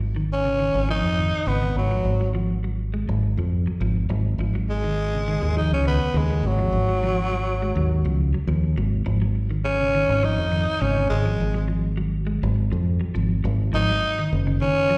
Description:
afrobeat; 103 BPM; 4/4; straight; A4 = 440 Hz
clean electric guitar; arpeggios; 0.0-15.0 s; C#3 to G#3; -32 LUFS; equal; slapback echo, tape echo
fingered electric bass; bass; 0.0-14.6 s; F#1 to E#2; -25 LUFS; equal
growling tenor saxophone; melody; 0.3-15.0 s; F#3 to D#4; -26 LUFS; equal; slapback echo
light reverb; live gig heard through the venue's PA, recital hall reverb; -23 LUFS; mono
0.0-13.7 A section; 13.7-15.0 B section
0.0 C#sus4/G# (rootless); 13.7 G#5
0.30 0.89 1.47 | 2.06 2.64 3.23 3.81 | 4.40 4.98 5.56 6.15 | 6.73 7.32 7.90 8.48 | 9.07 9.65 10.24 10.82 | 11.40 11.99 12.57 13.15 | 13.74 14.32 14.90

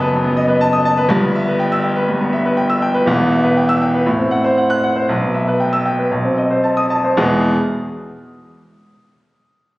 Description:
classical, virtuoso piano study; 119 BPM; 4/4; uneven beats, rubato; E minor; A4 = 440 Hz
clear grand piano; solo; 0.0-7.6 s; E1 to F#6; -14 LUFS; equal
wet recital hall reverb, RT60 1.6 s; recorded on a phone in the room, club reverb, compression; -14 LUFS; side -19 dB against mid
0.0-7.2 A section; 7.2-9.2 B section
0.0 B7/F#; 1.1 Em/G; 3.1 Em; 4.1 F#dim/A; 5.1 Em/B; 6.1 B7b9; 7.2 E
0.12 0.61 | 1.10 1.59 2.08 2.58 | 3.07 3.57 4.07 4.57 | 5.08 5.59 6.11 6.63 | 7.17

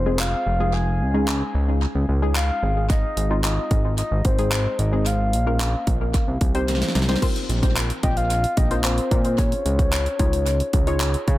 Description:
dance-pop; 111 BPM; 4/4; straight; A4 = 440 Hz
soft octave-layered synth lead; melody; 0.0-11.0 s; C5 to Ab5; -27 LUFS; left 1 dB; chorus, tape echo
fat analog bass; bass; 0.0-11.4 s; F1 to Db3; -22 LUFS; equal; sidechain pumping
soft round pluck; accompaniment; 0.1-11.3 s; Ab3 to Eb5; -28 LUFS; left 2 dB; chorus, sidechain pumping, tape echo
pop drum kit; drums; 0.2-11.4 s; crash cymbal, handclaps, hi-hat, kick drum, snare drum; -23 LUFS; equal; tape echo
light reverb; echo-heavy mix; -19 LUFS; side -16 dB against mid
0.0-7.2 A section; 7.2-11.4 B section
drum fill 6.7-7.2
0.0 Fm; 0.7 Dbsus2; 2.6 Ab; 5.1 Bbm; 6.1 Cm; 7.2 Bbsus2; 9.4 Dbadd9
0.20 | 0.74 1.28 1.82 2.36 | 2.90 3.44 3.98 4.52 | 5.06 5.60 6.14 6.68 | 7.22 7.76 8.30 8.85 | 9.38 9.93 10.47 11.01

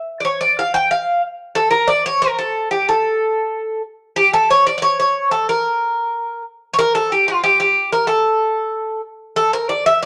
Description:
greek folk; 92 BPM; 2/4; straight; A phrygian dominant; A4 = 441 Hz
Greek bouzouki; solo; 0.2-10.1 s; F4 to G5; -17 LUFS; equal
moderate studio reverb, RT60 0.9 s; -17 LUFS; mono
0.0-4.2 A section; 4.2-10.1 A section
| 0.25 0.91 | 1.56 2.21 | 2.86 3.52 | 4.17 4.82 | 5.47 6.12 | 6.77 7.42 | 8.07 8.72 | 9.37 10.02

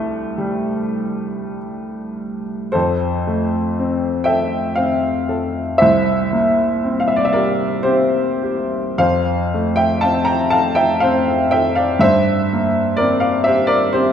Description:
classical, romantic nocturne for solo piano; 58 BPM; 3/4; uneven beats, rubato; F major; A4 = 440 Hz
warm upright piano; solo; 0.0-14.1 s; C2 to Bb5; -15 LUFS; equal
moderate concert hall reverb, RT60 2.2 s; recorded in a church or concert hall; -15 LUFS; side -8 dB against mid
0.0-2.7 A section; 2.7-14.1 B section
0.0 C; 2.7 F; 5.8 C7; 9.0 F; 12.0 C7/G
0.41 1.59 | 2.74 3.78 4.79 | 5.82 6.84 7.84 | 9.00 10.03 11.01 | 12.01 12.97 13.93

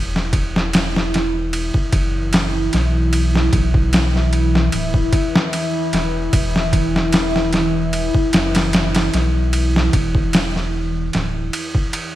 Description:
trip hop; 75 BPM; 4/4; swing 54% on 16ths; A4 = 436 Hz
dark analog pad; sustained chords; 0.2-12.2 s; E3 to E4; -22 LUFS; equal; chorus, phaser
round analog bass; bass; 0.0-11.5 s; D1 to B1; -20 LUFS; equal
boom bap sampler-style drum kit; drums; 0.2-12.1 s; kick drum, ride cymbal, snare drum; -18 LUFS; equal; overdrive, studio reverb, gated reverb
light reverb, digital ambience; bright 1980s-style digital production, vinyl crackle; -15 LUFS; side -14 dB against mid
0.0-12.2 A section
0.0 B5/E
0.73 1.53 2.33 | 3.13 3.93 4.73 5.53 | 6.33 7.13 7.93 8.73 | 9.53 10.33 11.13 11.93

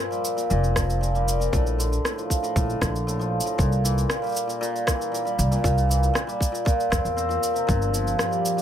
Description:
folktronica; 117 BPM; 4/4; straight; C mixolydian; A4 = 440 Hz
hammered dulcimer; arpeggios; 0.0-8.6 s; A2 to C4; -25 LUFS; equal; ping-pong delay
electronic shaker and rim click; drums; 0.1-8.6 s; -29 LUFS; equal; overdrive
upright bass; bass; 0.5-8.1 s; F1 to E2; -24 LUFS; equal
electronic kick drum; drums; 0.8-7.8 s; -24 LUFS; equal; overdrive
warbly tape-like pad; sustained chords; 7.9-8.6 s; F3 to D5; -30 LUFS; left 4 dB; chorus, built-in reverb
moderate studio reverb, RT60 0.5 s; -21 LUFS; side -10 dB against mid
0.0-8.6 A section
0.0 Gm7; 1.5 Bbmaj7; 3.6 C7; 7.7 Gm7
0.51 1.02 | 1.53 2.05 2.56 3.07 | 3.58 4.10 4.61 5.12 | 5.64 6.15 6.66 7.17 | 7.69 8.20

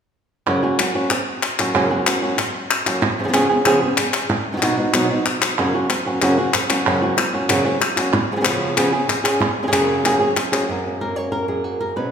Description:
flamenco; 188 BPM; 4/4; straight; F# major; A4 = 438 Hz
flamenco guitar; melody; 0.5-12.1 s; F#2 to C#5; -19 LUFS; right 1 dB
palmas hand claps; percussion; 0.5-10.7 s; -20 LUFS; left 2 dB
wet recital hall reverb, RT60 1.9 s; recorded in a church or concert hall; -17 LUFS; side -7 dB against mid
0.5-10.7 A section; 10.7-12.1 B section
0.5 F#; 3.0 C#7; 4.3 B; 5.6 F#; 8.1 C#7; 9.4 F#add9; 10.7 F#
| 0.47 0.79 1.11 1.43 | 1.75 2.07 2.39 2.71 | 3.02 3.35 3.66 3.98 | 4.30 4.62 4.94 5.26 | 5.58 5.90 6.22 6.54 | 6.86 7.18 7.50 7.82 | 8.13 8.45 8.77 9.09 | 9.41 9.73 10.05 10.37 | 10.68 11.00 11.32 11.64 | 11.96

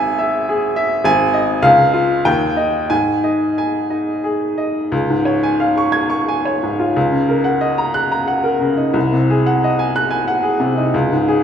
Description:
classical, romantic character piece for solo piano; 88-104 BPM; 3/4; rubato; Db major from 4.9 s; A4 = 440 Hz
clear upright piano; solo; 0.0-11.4 s; G#1 to Ab6; -14 LUFS; equal
wet scoring stage reverb, RT60 1.6 s; recorded in a church or concert hall; -14 LUFS; side -8 dB against mid
0.0-4.9 A section; 4.9-11.4 B section
0.0 E/G#; 1.1 Ab5; 1.6 Db; 2.3 Eb; 2.9 Ab5; 4.9 Db; 7.0 Ebm7/Db; 8.9 Ab7/C; 10.9 Db5
0.49 | 1.06 1.64 2.25 | 2.91 3.59 4.24 | 4.92 5.60 6.28 | 6.95 7.61 8.28 | 8.95 9.62 10.27 | 10.92

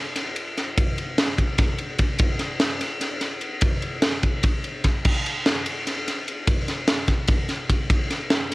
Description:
rock; 295 BPM (eighths); 7/8; straight
crisp fusion drum kit; drums; 0.2-8.5 s; crash cymbal, kick drum, ride cymbal, snare drum; -21 LUFS; equal; cassette tape
little or no reverb; home recording on cassette; -21 LUFS; side -22 dB against mid
0.0-8.5 A section
0.17 0.37 0.58 | 0.78 0.98 1.19 1.39 1.59 1.80 2.00 | 2.21 2.41 2.61 2.81 3.02 3.22 3.43 | 3.63 3.83 4.04 4.24 4.44 4.65 4.85 | 5.05 5.26 5.46 5.66 5.87 6.07 6.28 | 6.48 6.68 6.89 7.09 7.29 7.50 7.70 | 7.91 8.11 8.31 8.52

